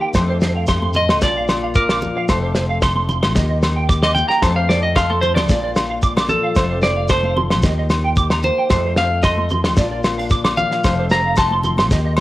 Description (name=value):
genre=highlife guitar band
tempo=112 BPM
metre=4/4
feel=straight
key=F mixolydian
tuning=A4 = 439 Hz
part: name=clean electric guitar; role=melody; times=0.0-11.5 s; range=G4 to Bb5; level=-19 LUFS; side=equal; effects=cassette tape
part: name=fingerpicked steel-string acoustic guitar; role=accompaniment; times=0.0-12.2 s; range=F2 to A4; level=-26 LUFS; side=left 4 dB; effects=none
part: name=clean electric guitar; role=arpeggios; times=0.0-12.1 s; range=C5 to D6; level=-23 LUFS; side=right 3 dB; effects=ensemble chorus, tape echo
part: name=warm soul drum kit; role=drums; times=0.1-12.2 s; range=kick drum, snare drum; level=-20 LUFS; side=equal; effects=cassette tape
part: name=shekere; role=percussion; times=0.1-12.2 s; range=none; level=-27 LUFS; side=equal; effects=none
part: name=mellow fretless electric bass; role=bass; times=0.2-12.2 s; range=F1 to F2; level=-21 LUFS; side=equal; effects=none
part: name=agogo bells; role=percussion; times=0.2-12.2 s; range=none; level=-26 LUFS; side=left 2 dB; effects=none
part: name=congas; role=percussion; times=0.4-12.0 s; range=none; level=-28 LUFS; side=equal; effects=none
room=small room ambience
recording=home recording on cassette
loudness=-15 LUFS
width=side -16 dB against mid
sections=0.0-12.2 A section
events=clean electric guitar solo 0.0-12.2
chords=0.1 F; 1.2 Bb; 2.3 F; 3.4 Eb; 4.4 F; 5.5 Bb; 6.6 F; 7.6 Eb; 8.7 F; 9.8 Bb; 10.8 F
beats=| 0.15 0.68 1.22 1.75 | 2.29 2.83 3.36 3.90 | 4.43 4.96 5.50 6.03 | 6.57 7.10 7.64 8.17 | 8.70 9.24 9.77 10.30 | 10.84 11.37 11.90